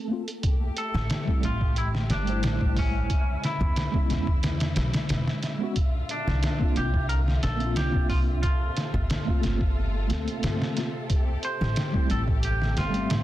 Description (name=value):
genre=trip hop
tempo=90 BPM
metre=4/4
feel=straight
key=A phrygian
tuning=A4 = 440 Hz
part: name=mellow tine electric piano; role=accompaniment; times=0.0-13.2 s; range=G3 to E5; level=-32 LUFS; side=equal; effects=medium stereo tremolo, tape echo
part: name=flickering grainy texture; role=texture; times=0.0-13.2 s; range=A4 to E5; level=-44 LUFS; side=left 1 dB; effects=built-in reverb
part: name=trip hop sampler-style drum kit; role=drums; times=0.3-13.2 s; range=hi-hat, kick drum, snare drum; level=-26 LUFS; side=equal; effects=none
part: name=rich symphonic string section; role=sustained chords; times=0.4-13.2 s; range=Bb2 to A4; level=-37 LUFS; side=left 1 dB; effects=vintage 12-bit sampler grit
part: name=clean electric guitar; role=melody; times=0.8-13.2 s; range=C#4 to C5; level=-33 LUFS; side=equal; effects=harmonic tremolo, tape echo
part: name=upright bass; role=bass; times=0.9-13.2 s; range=E1 to G2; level=-27 LUFS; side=equal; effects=none
room=digital ambience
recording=dense, heavily limited modern master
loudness=-23 LUFS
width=side -14 dB against mid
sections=0.0-13.2 A section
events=break 0.0-0.4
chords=0.4 Am7; 3.1 E6; 5.8 C9sus4; 8.4 Gm11; 11.1 Am7